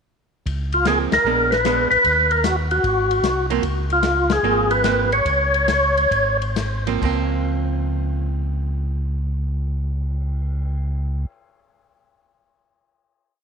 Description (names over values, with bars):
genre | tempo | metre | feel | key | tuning
soul jazz organ trio | 128-152 BPM | 4/4 | swing 67% on 8ths | Db major | A4 = 441 Hz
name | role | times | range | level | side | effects
mellow tonewheel organ | bass | 0.5-11.2 s | Ab1 to Eb2 | -23 LUFS | equal | chorus vibrato, slow rotary speaker
warm soul drum kit | drums | 0.5-10.7 s | crash cymbal, cymbal swell, hi-hat, kick drum, ride cymbal, snare drum | -28 LUFS | left 6 dB | none
percussive tonewheel organ | melody | 0.7-6.4 s | F4 to Db5 | -18 LUFS | left 1 dB | slow rotary speaker, overdrive, chorus vibrato, tape echo
archtop guitar, miked and amplified | accompaniment | 0.9-11.3 s | F3 to D4 | -25 LUFS | right 11 dB | none
room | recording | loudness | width
moderate echo chamber reverb, RT60 1.8 s, small room ambience | 1960s-style stereo with parts hard left and right | -18 LUFS | side -6 dB against mid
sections
0.5-7.0 A section; 7.0-10.7 final chord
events
band accent 1.1, 4.2; slowing down 3.6-7.0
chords
0.5 Db6; 1.3 Bb7b9; 2.0 Ebm; 2.8 Ab9; 3.6 Db6